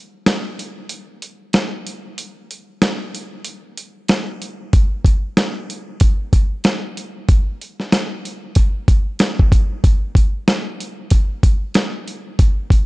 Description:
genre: hip hop.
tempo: 94 BPM.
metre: 4/4.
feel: swing 59% on 16ths.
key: none.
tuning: none.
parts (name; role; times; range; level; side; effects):
dusty soul sampler-style drum kit; drums; 0.3-12.9 s; hi-hat, kick drum, snare drum; -15 LUFS; equal; vintage 12-bit sampler grit.
room: digital ambience.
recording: none.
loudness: -15 LUFS.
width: side -21 dB against mid.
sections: 0.0-12.9 A section.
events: break 0.0-4.7.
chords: none.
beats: 0.26 0.90 1.54 | 2.18 2.82 3.46 4.09 | 4.73 5.37 6.01 6.65 | 7.29 7.92 8.56 9.20 | 9.84 10.48 11.12 11.75 | 12.39.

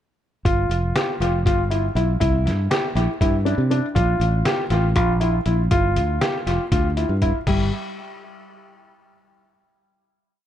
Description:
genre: progressive instrumental, band music in an uneven meter.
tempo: 240 BPM (eighths).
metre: 7/8.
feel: straight.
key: G dorian.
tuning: A4 = 440 Hz.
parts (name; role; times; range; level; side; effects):
dark grand piano; arpeggios; 0.5-7.7 s; G3 to G4; -23 LUFS; left 1 dB; dub echo.
fingered electric bass; bass; 0.5-7.7 s; F1 to C3; -21 LUFS; equal; none.
trip hop sampler-style drum kit; drums; 0.5-7.6 s; crash cymbal, hi-hat, kick drum, snare drum; -24 LUFS; equal; dub echo.
room: little or no reverb.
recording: echo-heavy mix.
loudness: -18 LUFS.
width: side -11 dB against mid.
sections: 0.5-7.5 A section; 7.5-9.2 final note.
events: none.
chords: 0.5 Fsus2; 2.2 C; 4.0 Bb5; 5.7 G5; 7.5 N.C..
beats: | 0.46 0.71 0.96 1.21 1.46 1.71 1.96 | 2.21 2.46 2.71 2.96 3.21 3.46 3.71 | 3.96 4.21 4.47 4.72 4.97 5.22 5.47 | 5.72 5.97 6.22 6.47 6.72 6.97 7.22 | 7.47.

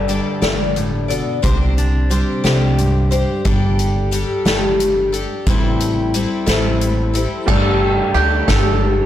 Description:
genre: indie folk with a building arrangement.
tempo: 60 BPM (dotted quarters).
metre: 6/8.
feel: straight.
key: unclear.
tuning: A4 = 437 Hz.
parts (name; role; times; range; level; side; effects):
fingerpicked steel-string acoustic guitar; accompaniment; 0.0-5.5 s; G2 to G4; -24 LUFS; right 1 dB; none.
picked twelve-string acoustic guitar; accompaniment; 0.0-9.1 s; A2 to D5; -20 LUFS; left 3 dB; none.
upright bass; bass; 0.0-9.0 s; G1 to D2; -19 LUFS; equal; none.
soft-mallet drum kit; drums; 0.1-9.0 s; crash cymbal, hi-hat, kick drum, ride cymbal, snare drum; -20 LUFS; equal; none.
bright upright piano; accompaniment; 7.5-9.1 s; G1 to D5; -26 LUFS; right 2 dB; none.
bluegrass banjo; arpeggios; 7.5-9.1 s; G4 to A4; -21 LUFS; right 7 dB; none.
room: light reverb.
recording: blown-out, overdriven recording, overdrive.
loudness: -14 LUFS.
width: side -12 dB against mid.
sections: 0.0-7.5 A section; 7.5-9.1 B section.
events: none.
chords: 0.0 Gsus2; 1.4 Csus2; 3.4 Gsus2; 5.5 Am7; 7.5 Gsus2.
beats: 0.42 | 1.43 2.44 | 3.45 4.46 | 5.46 6.47 | 7.47 8.48.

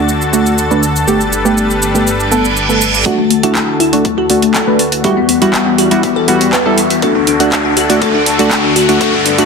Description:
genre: progressive house.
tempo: 121 BPM.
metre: 4/4.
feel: straight.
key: D major.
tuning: A4 = 441 Hz.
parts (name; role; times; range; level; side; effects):
supersaw pad; sustained chords; 0.0-9.5 s; D2 to B4; -19 LUFS; left 2 dB; vintage 12-bit sampler grit, sidechain pumping, low-pass filter.
deep mellow chord stab; stabs; 0.0-9.5 s; G3 to B4; -14 LUFS; right 2 dB; chorus, cassette tape, sidechain pumping, tape echo.
dark detuned saw bass; bass; 0.0-3.0 s; G1 to D2; -20 LUFS; equal; sidechain pumping.
twinkling granular texture; texture; 0.0-3.1 s; A5 to A6; -24 LUFS; left 1 dB; built-in reverb, sidechain pumping.
pop drum kit; drums; 0.1-9.5 s; handclaps, hi-hat, shaker; -17 LUFS; right 1 dB; high-pass filter on perc, high-pass filter on hats, high-pass filter on snare.
reverse cymbal and riser; sound effects; 2.3-9.5 s; none; -19 LUFS; right 1 dB; none.
glassy wavetable pluck; arpeggios; 3.1-9.5 s; A3 to B4; -14 LUFS; left 5 dB; chorus, sidechain pumping, tape echo.
electronic kick drum; drums; 3.1-9.1 s; none; -23 LUFS; left 1 dB; high-pass filter on kick.
room: moderate digital room reverb, RT60 1.2 s.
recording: dense, heavily limited modern master.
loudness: -9 LUFS.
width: side -5 dB against mid.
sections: 0.0-3.1 A section; 3.1-9.5 B section.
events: reverse cymbal 2.3-3.1; build-up 3.1-9.5; riser 3.1-9.5; filter sweep on supersaw synth 3.1-9.5.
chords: 0.0 D; 1.1 Gadd9; 3.1 D; 5.0 Emadd9; 7.0 D.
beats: 0.08 0.58 | 1.07 1.57 2.07 2.56 | 3.06 3.55 4.05 4.55 | 5.04 5.54 6.03 6.53 | 7.03 7.52 8.02 8.51 | 9.01.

